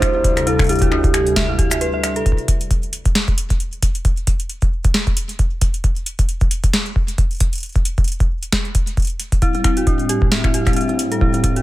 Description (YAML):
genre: IDM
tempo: 134 BPM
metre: 4/4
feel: swing 56% on 16ths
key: unclear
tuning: A4 = 439 Hz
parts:
  - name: warbly nostalgic lead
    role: melody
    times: 0.0-1.4 s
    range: G4 to C5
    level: -21 LUFS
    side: right 1 dB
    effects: chorus, tremolo, ping-pong delay
  - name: hollow soft pad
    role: sustained chords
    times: 0.0-2.2, 9.4-11.6 s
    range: D2 to C4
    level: -22 LUFS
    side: left 1 dB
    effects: chorus, vintage 12-bit sampler grit
  - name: dark detuned synth bell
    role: arpeggios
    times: 0.0-2.3, 9.4-11.6 s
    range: D4 to E5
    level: -21 LUFS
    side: right 1 dB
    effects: chorus, ping-pong delay
  - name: booming analog drum machine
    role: drums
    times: 0.0-11.6 s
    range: cabasa, finger snaps, hi-hat, snare drum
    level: -22 LUFS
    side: equal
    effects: overdrive
  - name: electronic kick drum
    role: drums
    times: 0.0-11.5 s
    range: none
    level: -17 LUFS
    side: equal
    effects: overdrive
room: little or no reverb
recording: none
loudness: -16 LUFS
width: side -16 dB against mid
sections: 0.0-2.3 A section; 2.3-11.6 B section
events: break 1.8-2.3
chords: 0.0 D7sus4; 2.3 N.C.; 9.4 Am7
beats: 0.02 | 0.47 0.92 1.36 1.81 | 2.26 2.71 3.15 3.60 | 4.05 4.50 4.95 5.39 | 5.84 6.29 6.74 7.18 | 7.63 8.08 8.53 8.97 | 9.42 9.87 10.32 10.77 | 11.21